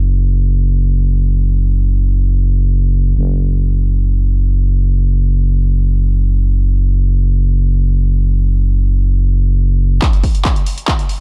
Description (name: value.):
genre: driving peak-time techno.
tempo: free time.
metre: none.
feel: none.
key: unclear.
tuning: A4 = 440 Hz.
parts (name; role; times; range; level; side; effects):
growling FM bass; bass; 0.0-10.0 s; F#1; -14 LUFS; equal; sidechain pumping.
electronic kick drum; drums; 10.0-11.0 s; none; -16 LUFS; equal; overdrive, studio reverb.
techno drum kit; drums; 10.0-11.2 s; handclaps, hi-hat; -23 LUFS; equal; overdrive, studio reverb.
room: little or no reverb.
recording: dark, warm production.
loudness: -14 LUFS.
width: mono.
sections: 0.0-10.0 A section; 10.0-11.2 B section.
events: build-up 10.0-11.2; drum fill 10.0-11.2.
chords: none.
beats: free time.